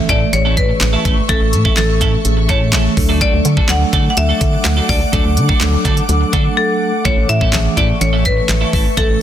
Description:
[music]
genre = dance-pop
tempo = 125 BPM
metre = 4/4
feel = straight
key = A major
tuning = A4 = 440 Hz
[part]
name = marimba with hard mallets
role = melody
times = 0.0-9.2 s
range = A4 to F#5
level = -19 LUFS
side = left 3 dB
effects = ping-pong delay
[part]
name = mellow tine electric piano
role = accompaniment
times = 0.0-9.2 s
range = E3 to A4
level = -22 LUFS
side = right 1 dB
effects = medium stereo tremolo, sidechain pumping
[part]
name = ethereal airy pad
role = sustained chords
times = 0.0-9.2 s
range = A3 to D6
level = -23 LUFS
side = right 1 dB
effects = ensemble chorus, built-in reverb, phaser, sidechain pumping
[part]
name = impact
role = sound effects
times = 0.0-1.3 s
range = none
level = barely audible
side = none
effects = none
[part]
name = twelve-string electric guitar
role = riff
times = 0.1-9.2 s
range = A3 to A4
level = -22 LUFS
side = right 4 dB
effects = lush chorus
[part]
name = organ-like FM bass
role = bass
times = 0.1-9.2 s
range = G#1 to D3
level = -16 LUFS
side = equal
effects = sidechain pumping
[part]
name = pop drum kit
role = drums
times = 0.1-9.1 s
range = handclaps, hi-hat, kick drum, snare drum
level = -17 LUFS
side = equal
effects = none
[sound]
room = little or no reverb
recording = dense, heavily limited modern master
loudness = -12 LUFS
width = side -10 dB against mid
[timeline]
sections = 0.0-9.2 A section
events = impact 0.0-1.3; silent gap 6.6-7.1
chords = 0.0 A; 3.0 D; 7.1 A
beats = 0.33 0.81 | 1.29 1.77 2.25 2.73 | 3.21 3.69 4.17 4.65 | 5.13 5.61 6.09 6.57 | 7.05 7.53 8.01 8.49 | 8.97

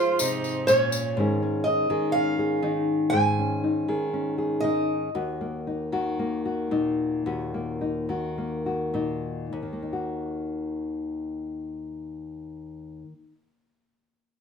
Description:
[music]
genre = acoustic folk duo or small band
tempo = 51-62 BPM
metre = 4/4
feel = straight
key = Eb dorian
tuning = A4 = 440 Hz
[part]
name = picked old ladder-braced acoustic guitar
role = melody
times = 0.0-8.3 s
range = C5 to Ab5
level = -25 LUFS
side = right 2 dB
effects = plate reverb
[part]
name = warm cello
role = second line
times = 0.0-1.2 s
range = Db4 to F4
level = -31 LUFS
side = right 2 dB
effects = none
[part]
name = nylon-string guitar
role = accompaniment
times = 0.0-13.4 s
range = Eb2 to Ab4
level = -26 LUFS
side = left 2 dB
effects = none
[part]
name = tambourine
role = percussion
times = 0.2-1.2 s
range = none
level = -31 LUFS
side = left 4 dB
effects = none
[sound]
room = light reverb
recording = none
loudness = -24 LUFS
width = side -6 dB against mid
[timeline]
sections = 0.0-1.2 A section; 1.2-9.5 B section; 9.5-14.2 C section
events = slowing down 1.2-9.5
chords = 0.0 Db; 1.2 Absus4; 5.1 Ebm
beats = 0.21 | 1.17 2.15 3.13 4.12 | 5.14 6.19 7.26 8.37 | 9.53 10.71 11.88 13.06

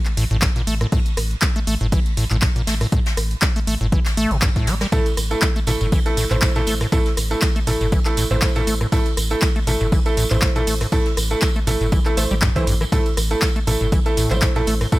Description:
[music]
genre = acid house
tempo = 120 BPM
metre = 4/4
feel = swing 55% on 16ths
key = A phrygian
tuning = A4 = 440 Hz
[part]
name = punchy analog drum machine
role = drums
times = 0.1-15.0 s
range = handclaps, hi-hat, rim click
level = -25 LUFS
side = equal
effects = overdrive
[part]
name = acid bass, square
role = riff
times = 0.2-15.0 s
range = G2 to A3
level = -24 LUFS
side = equal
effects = tube saturation, tape echo
[part]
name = round analog bass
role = bass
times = 0.2-14.9 s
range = G1 to A1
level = -23 LUFS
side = equal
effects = tube saturation, sidechain pumping
[part]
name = soft brush drum kit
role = drums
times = 0.2-15.0 s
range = ride cymbal, snare drum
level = -33 LUFS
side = right 1 dB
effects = sidechain pumping on cymbals, high-pass filter on cymbals, high-pass filter on snare, high-pass filter on room
[part]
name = electronic kick drum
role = drums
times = 0.4-15.0 s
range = none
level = -20 LUFS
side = equal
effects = overdrive
[part]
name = bright concert grand piano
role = stabs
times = 4.9-15.0 s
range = A3 to C5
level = -23 LUFS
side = right 2 dB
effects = tape echo
[part]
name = tambourine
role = percussion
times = 4.9-15.0 s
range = none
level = -32 LUFS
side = right 3 dB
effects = none
[sound]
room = little or no reverb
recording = none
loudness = -17 LUFS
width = side -18 dB against mid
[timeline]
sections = 0.0-15.0 A section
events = none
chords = 0.0 A5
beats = 0.42 | 0.92 1.42 1.92 2.42 | 2.92 3.42 3.92 4.42 | 4.92 5.42 5.92 6.42 | 6.92 7.42 7.92 8.42 | 8.92 9.42 9.92 10.42 | 10.92 11.42 11.92 12.42 | 12.92 13.42 13.92 14.42 | 14.92

